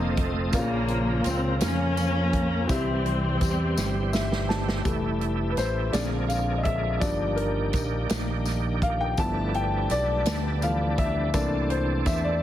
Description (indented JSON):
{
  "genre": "slow gospel",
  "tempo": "56 BPM (dotted quarters)",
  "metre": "6/8",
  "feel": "straight",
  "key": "F major",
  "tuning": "A4 = 439 Hz",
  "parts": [
    { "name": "warm studio string section", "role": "melody", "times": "0.0-4.5 s", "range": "Db3 to Db4", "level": "-27 LUFS", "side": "left 1 dB", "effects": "none" },
    { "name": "clear upright piano", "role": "accompaniment", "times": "0.0-12.4 s", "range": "Bb2 to A5", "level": "-28 LUFS", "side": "left 2 dB", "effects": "none" },
    { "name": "bright tonewheel organ", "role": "sustained chords", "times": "0.0-12.4 s", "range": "Db3 to Eb5", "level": "-32 LUFS", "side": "right 5 dB", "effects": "slow rotary speaker, overdrive, chorus vibrato" },
    { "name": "fingered electric bass", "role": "bass", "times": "0.0-12.4 s", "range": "F1 to F2", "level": "-28 LUFS", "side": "equal", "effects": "none" },
    { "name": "natural country drum kit", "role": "drums", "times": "0.2-12.2 s", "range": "hi-hat, kick drum, snare drum", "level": "-29 LUFS", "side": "equal", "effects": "none" },
    { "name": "tambourine", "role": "percussion", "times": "0.5-12.4 s", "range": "none", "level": "-40 LUFS", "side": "left 8 dB", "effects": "none" }
  ],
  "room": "light reverb, studio reverb",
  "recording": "heavily compressed radio sound, multiband compression",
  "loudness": "-23 LUFS",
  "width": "side -12 dB against mid",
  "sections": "0.0-4.9 A section; 4.9-12.4 B section",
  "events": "drum fill 3.8-4.9; upright piano fill 3.8-4.9; upright piano solo 4.9-12.4",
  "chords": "0.0 F7; 0.5 Bbm; 2.7 C; 4.9 Fmaj9; 5.9 Bb7; 7.0 Ebmaj7/G; 9.2 G13; 11.3 C13"
}